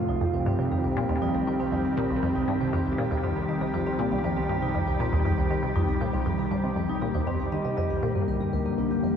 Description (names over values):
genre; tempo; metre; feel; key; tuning
ambient, sequencer-driven space music; 119 BPM; 4/4; straight; C minor; A4 = 441 Hz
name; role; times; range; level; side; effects
evolving wavetable pad; sustained chords; 0.0-9.2 s; D3 to G4; -27 LUFS; left 1 dB; chorus, built-in reverb
vibraphone with medium mallets; arpeggios; 0.0-9.2 s; Bb3 to Eb5; -36 LUFS; left 1 dB; auto-pan, tape echo
resonant blip pluck; riff; 0.0-9.1 s; C2 to Eb3; -27 LUFS; equal; phaser, lush chorus, tape echo
analog drone; bass; 1.5-9.2 s; G1 to C2; -39 LUFS; equal; none
room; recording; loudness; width
wet huge ambient reverb, RT60 7.9 s; dark, warm production; -24 LUFS; side -8 dB against mid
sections
0.0-9.2 A section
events
fade-in on vibraphone 0.0-9.2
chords
0.1 Cm; 8.2 Gm